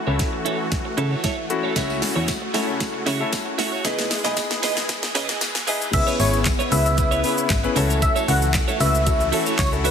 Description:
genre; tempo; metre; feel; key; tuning
dance-pop; 115 BPM; 4/4; straight; unclear; A4 = 439 Hz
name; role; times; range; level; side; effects
supersaw chords; sustained chords; 0.0-9.9 s; C#3 to G#4; -29 LUFS; equal; sidechain pumping
warm grand piano; accompaniment; 0.1-9.9 s; A3 to C#5; -26 LUFS; left 6 dB; sidechain pumping
twelve-string electric guitar; riff; 0.1-9.9 s; E4 to D#5; -28 LUFS; right 8 dB; wide subtle chorus
slap-like FM bass; bass; 0.1-9.9 s; G#1 to C#3; -23 LUFS; equal; sidechain pumping
pop drum kit; drums; 0.2-9.9 s; crash cymbal, handclaps, hi-hat, kick drum, shaker, snare drum; -24 LUFS; equal; none
tambourine; percussion; 1.8-9.9 s; none; -37 LUFS; left 6 dB; none
octave-doubled lead; melody; 5.9-9.9 s; B4 to F#5; -24 LUFS; left 1 dB; chorus, sidechain pumping, ping-pong delay
room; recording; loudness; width
light reverb, digital ambience; dense, heavily limited modern master, high-pass filter; -19 LUFS; side -7 dB against mid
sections
0.0-5.9 A section; 5.9-9.9 B section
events
build-up 0.0-5.9; drum fill 0.0-5.9; filter sweep 0.0-5.9; drop 5.9-9.9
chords
0.0 F#m7/C#; 3.8 Emaj7; 5.9 C#m7; 7.8 F#m7/C#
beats
0.20 0.72 1.24 | 1.76 2.28 2.81 3.33 | 3.85 4.37 4.89 5.41 | 5.93 6.46 6.98 7.50 | 8.02 8.54 9.06 9.59

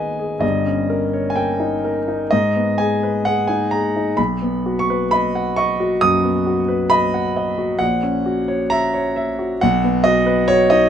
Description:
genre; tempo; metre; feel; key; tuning
classical, romantic nocturne for solo piano; 63-68 BPM; 4/4; rubato; unclear; A4 = 440 Hz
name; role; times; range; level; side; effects
warm concert grand piano; solo; 0.0-10.9 s; G1 to D#6; -16 LUFS; equal; none
room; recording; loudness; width
light reverb; none; -16 LUFS; side -9 dB against mid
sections
0.0-10.9 A section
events
none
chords
0.4 D#7/G; 2.3 G#m; 4.2 B; 7.8 F#7/A#; 9.6 B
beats
| 0.42 1.36 2.31 3.25 | 4.18 5.12 6.03 6.92 | 7.80 8.71 9.60 10.49

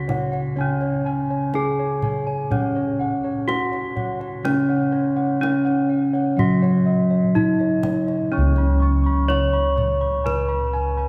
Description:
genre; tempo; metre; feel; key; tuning
Javanese gamelan; 62 BPM; 4/4; straight; C# slendro; A4 = 440 Hz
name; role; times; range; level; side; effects
gamelan-type bronze metallophone; melody; 0.0-11.1 s; C#4 to C#5; -25 LUFS; equal; none
gamelan-type bronze metallophone; accompaniment; 0.0-8.3 s; C#3 to F#3-20c; -27 LUFS; equal; none
gamelan-type bossed gongs; arpeggios; 0.0-11.1 s; C#5 to C#6; -33 LUFS; equal; none
gamelan-type bronze metallophone; arpeggios; 0.0-11.1 s; C#5 to C#6; -32 LUFS; equal; none
gamelan-type bossed gongs; bass; 0.0-11.1 s; C#2 to D#4+40c; -27 LUFS; equal; none
kendang; percussion; 0.1-10.5 s; none; -34 LUFS; equal; none
room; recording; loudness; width
wet cathedral reverb, RT60 5.0 s; recorded in a church or concert hall; -21 LUFS; mono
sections
0.0-8.3 A section; 8.3-11.1 A section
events
none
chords
none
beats
| 0.57 1.54 2.51 3.48 | 4.44 5.41 6.38 7.35 | 8.31 9.28 10.25

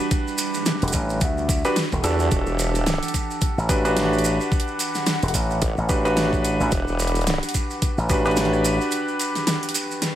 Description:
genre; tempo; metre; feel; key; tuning
glitch hop; 109 BPM; 4/4; swing 58% on 16ths; E minor; A4 = 440 Hz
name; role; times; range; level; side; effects
warbly tape-like pad; sustained chords; 0.0-10.2 s; E3 to F#5; -34 LUFS; left 1 dB; chorus, built-in reverb, vintage 12-bit sampler grit, sidechain pumping
clear concert grand piano; stabs; 0.0-10.2 s; D4 to B4; -24 LUFS; right 1 dB; vintage 12-bit sampler grit, sidechain pumping, ping-pong delay
dubstep drum kit; drums; 0.1-10.1 s; hi-hat, rim click, snare drum; -26 LUFS; equal; overdrive
electronic kick drum; drums; 0.1-8.2 s; none; -24 LUFS; equal; overdrive
maracas; percussion; 0.1-10.2 s; none; -31 LUFS; right 3 dB; none
slap bass with an envelope filter; bass; 0.8-8.8 s; E1 to D2; -23 LUFS; equal; none
formant-sweep wobble bass; bass; 2.0-7.4 s; E1 to E2; -23 LUFS; equal; chorus, tube saturation
room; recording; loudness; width
little or no reverb; none; -19 LUFS; side -12 dB against mid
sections
0.0-10.2 A section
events
break 8.9-10.2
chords
0.0 Em7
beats
| 0.11 0.66 1.21 1.76 | 2.31 2.87 3.42 3.97 | 4.52 5.07 5.62 6.17 | 6.72 7.27 7.82 8.37 | 8.92 9.47 10.02

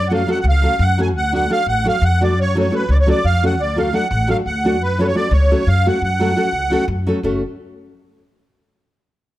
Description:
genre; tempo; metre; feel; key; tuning
balkan folk, Balkan wedding band; 345 BPM (eighths); 7/8; straight; F# harmonic minor; A4 = 443 Hz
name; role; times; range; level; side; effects
musette accordion; melody; 0.0-6.9 s; B4 to G#5; -20 LUFS; right 1 dB; none
upright bass; bass; 0.0-7.4 s; F#1 to F#2; -18 LUFS; equal; none
nylon-string guitar; accompaniment; 0.1-7.4 s; F#3 to A4; -20 LUFS; equal; none
room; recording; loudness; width
light reverb; close, detailed microphones; -14 LUFS; side -14 dB against mid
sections
0.0-7.2 A section; 7.2-8.5 B section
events
none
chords
0.0 F#m; 1.2 D; 2.4 F#m; 3.6 D; 4.8 F#m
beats
0.11 0.29 0.46 0.64 0.81 0.98 | 1.16 1.33 1.51 1.68 1.86 2.03 2.20 | 2.38 2.55 2.73 2.90 3.07 3.25 3.42 | 3.60 3.77 3.94 4.12 4.29 4.46 4.64 | 4.81 4.99 5.16 5.33 5.51 5.68 5.86 | 6.03 6.20 6.38 6.55 6.72 6.90 7.07 | 7.25

